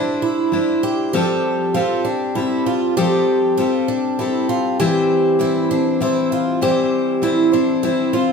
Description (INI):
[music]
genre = acoustic folk duo or small band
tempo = 98 BPM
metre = 3/4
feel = straight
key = unclear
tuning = A4 = 441 Hz
[part]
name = picked steel-string acoustic guitar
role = accompaniment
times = 0.0-8.3 s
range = E3 to C5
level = -18 LUFS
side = left 3 dB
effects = none
[part]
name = picked twelve-string acoustic guitar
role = arpeggios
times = 0.0-8.3 s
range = D4 to G4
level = -19 LUFS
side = right 3 dB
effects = none
[sound]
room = wet large studio reverb, RT60 1.0 s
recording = heard from further back in the room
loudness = -16 LUFS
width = side -5 dB against mid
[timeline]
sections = 0.0-1.1 A section; 1.1-8.3 B section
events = none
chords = 0.0 Cadd9; 1.1 Fadd9; 4.8 C/E